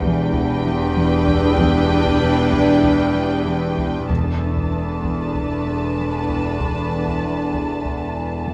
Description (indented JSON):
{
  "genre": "cinematic, suspense film score",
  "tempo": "96 BPM",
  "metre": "4/4",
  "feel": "straight",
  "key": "E minor",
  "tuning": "A4 = 440 Hz",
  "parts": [
    { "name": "dark studio violin section", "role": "melody", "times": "0.0-8.5 s", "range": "G5 to A5", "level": "-32 LUFS", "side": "equal", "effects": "none" },
    { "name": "dark studio violin section", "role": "second line", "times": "0.0-8.5 s", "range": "B4", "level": "-32 LUFS", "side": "equal", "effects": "none" },
    { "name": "dark studio viola section", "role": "accompaniment", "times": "0.0-8.5 s", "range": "D4", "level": "-26 LUFS", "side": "equal", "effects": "none" },
    { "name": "dark French horn section", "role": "sustained chords", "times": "0.0-8.5 s", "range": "D4 to A4", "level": "-27 LUFS", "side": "equal", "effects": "none" },
    { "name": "warm studio cello section", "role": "riff", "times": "0.0-8.5 s", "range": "E2 to E3", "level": "-32 LUFS", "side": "equal", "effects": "none" },
    { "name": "dark studio double bass section", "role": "bass", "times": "0.0-8.5 s", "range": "E1", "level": "-27 LUFS", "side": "equal", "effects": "none" },
    { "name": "rich studio cello section", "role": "bass", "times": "0.0-8.5 s", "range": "E2", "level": "-27 LUFS", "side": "equal", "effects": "none" },
    { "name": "overtone-sweeping drone", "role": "drone", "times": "0.0-8.5 s", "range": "E2", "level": "-30 LUFS", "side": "equal", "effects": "chorus, built-in reverb" },
    { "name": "solo taiko drums", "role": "drums", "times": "0.0-8.5 s", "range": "none", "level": "-31 LUFS", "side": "equal", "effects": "none" },
    { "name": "timpani", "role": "percussion", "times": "4.1-5.0 s", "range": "E2", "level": "-32 LUFS", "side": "equal", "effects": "none" }
  ],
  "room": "light reverb",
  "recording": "close, detailed microphones",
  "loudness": "-19 LUFS",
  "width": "mono",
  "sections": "0.0-8.5 A section",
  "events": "none",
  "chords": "0.0 Em7; 4.1 Bm7/E"
}